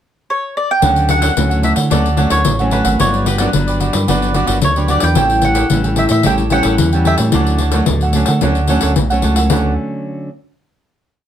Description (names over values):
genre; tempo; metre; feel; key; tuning
samba and choro; 111 BPM; 4/4; straight; D major; A4 = 440 Hz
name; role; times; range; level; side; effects
mandolin; melody; 0.3-8.9 s; B4 to G5; -18 LUFS; equal; none
cavaquinho; accompaniment; 0.8-9.7 s; D4 to G5; -21 LUFS; right 4 dB; none
nylon-string guitar; accompaniment; 0.8-10.3 s; G2 to E4; -19 LUFS; equal; none
fingered electric bass; bass; 0.8-9.8 s; G1 to D3; -17 LUFS; right 1 dB; none
pandeiro; percussion; 0.8-9.6 s; none; -18 LUFS; left 4 dB; none
room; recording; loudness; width
moderate studio reverb, RT60 0.6 s; none; -12 LUFS; side -10 dB against mid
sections
0.0-0.8 pickup bar; 0.8-9.5 A section; 9.5-11.3 final chord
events
none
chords
0.0 N.C.; 0.8 Dmaj7; 3.0 Gmaj7; 5.2 A7; 7.3 Dmaj7